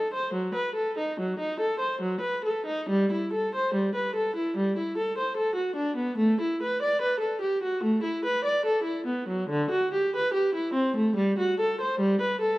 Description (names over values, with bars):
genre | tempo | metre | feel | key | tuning
classical, baroque-style suite movement for unaccompanied viola | 72 BPM | 4/4 | rubato | E minor | A4 = 440 Hz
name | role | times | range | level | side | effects
warm viola | solo | 0.0-12.6 s | D3 to D5 | -24 LUFS | equal | none
room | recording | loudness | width
moderate recital hall reverb, RT60 1.7 s | dark, warm production | -24 LUFS | side -18 dB against mid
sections
0.0-12.6 A section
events
none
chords
none